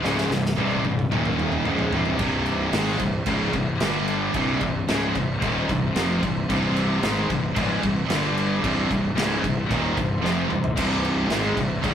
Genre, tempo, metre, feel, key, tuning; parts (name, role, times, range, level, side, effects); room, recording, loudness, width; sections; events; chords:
heavy metal; 112 BPM; 4/4; straight; C phrygian; A4 = 440 Hz
muted studio string section; sustained chords; 0.0-11.9 s; Eb3 to D5; -36 LUFS; left 1 dB
fuzz guitar; riff; 0.0-11.9 s; C2 to Ab3; -28 LUFS; equal; distortion
heavy high-gain guitar; riff; 0.0-11.9 s; C2 to Ab3; -27 LUFS; right 5 dB; distortion
scooped high-gain guitar; riff; 0.0-11.9 s; C2 to Ab3; -28 LUFS; left 6 dB; distortion
fuzz fingered electric bass; bass; 0.0-11.9 s; C1 to Ab1; -28 LUFS; equal; overdrive
big rock drum kit; drums; 0.0-11.9 s; crash cymbal, kick drum, snare drum, toms; -28 LUFS; equal
moderate studio ambience, RT60 0.5 s; rough rehearsal-room recording; -21 LUFS; side -9 dB against mid
0.0-2.2 A section; 2.2-11.9 B section
half time 0.0-2.2; drum fill 0.0-2.2, 10.2-10.8
0.0 Cm; 1.1 Eb5; 1.6 Cm; 3.8 G5; 4.3 Cm; 8.1 G5; 8.6 Cm